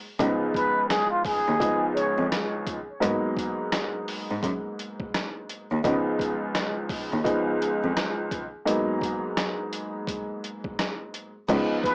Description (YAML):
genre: hip hop, boom-bap hip-hop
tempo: 85 BPM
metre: 4/4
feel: swing 62% on 16ths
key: G# dorian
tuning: A4 = 440 Hz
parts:
  - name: warm upright piano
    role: accompaniment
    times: 0.2-11.9 s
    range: C#2 to D#4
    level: -27 LUFS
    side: equal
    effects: high-pass filter, low-pass filter
  - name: clear cello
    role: bass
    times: 0.2-11.6 s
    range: C#2 to G#2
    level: -27 LUFS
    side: equal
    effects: none
  - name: trip hop sampler-style drum kit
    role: drums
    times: 0.2-11.9 s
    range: crash cymbal, hi-hat, kick drum, rim click, snare drum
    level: -30 LUFS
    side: equal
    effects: cassette tape
  - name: trumpet with plunger mute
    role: melody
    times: 0.6-2.3, 11.8-11.9 s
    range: E#4 to C#5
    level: -25 LUFS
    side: equal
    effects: high-pass filter, low-pass filter, analog delay
room: light reverb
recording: home recording on cassette, small speaker sound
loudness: -24 LUFS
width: side -34 dB against mid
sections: 0.2-11.5 A section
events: break 0.0, 8.7-11.5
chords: 0.2 C#7; 3.0 G#m7; 5.8 C#7; 8.7 G#m7